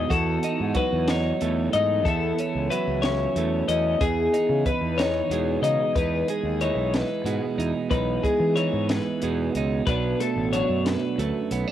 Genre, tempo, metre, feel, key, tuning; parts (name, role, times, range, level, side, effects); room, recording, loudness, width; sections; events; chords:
math rock and midwest emo; 61 BPM (dotted quarters); 6/8; straight; E major; A4 = 440 Hz
twelve-string electric guitar; accompaniment; 0.0-11.7 s; E2 to B4; -26 LUFS; right 6 dB; cassette tape
twelve-string electric guitar; arpeggios; 0.0-11.5 s; G#4 to D#5; -26 LUFS; left 6 dB; warbly pitch drift, cassette tape
fuzz fingered electric bass; bass; 0.0-11.6 s; A1 to E3; -28 LUFS; equal; overdrive
compact cocktail drum kit; drums; 0.1-11.7 s; hi-hat, kick drum, snare drum; -28 LUFS; equal; cassette tape
little or no reverb; home recording on cassette; -22 LUFS; side -11 dB against mid
0.0-6.0 A section; 6.0-11.7 B section
0.1 B7/E; 2.1 F#m7; 4.0 Emaj7; 9.9 Bm9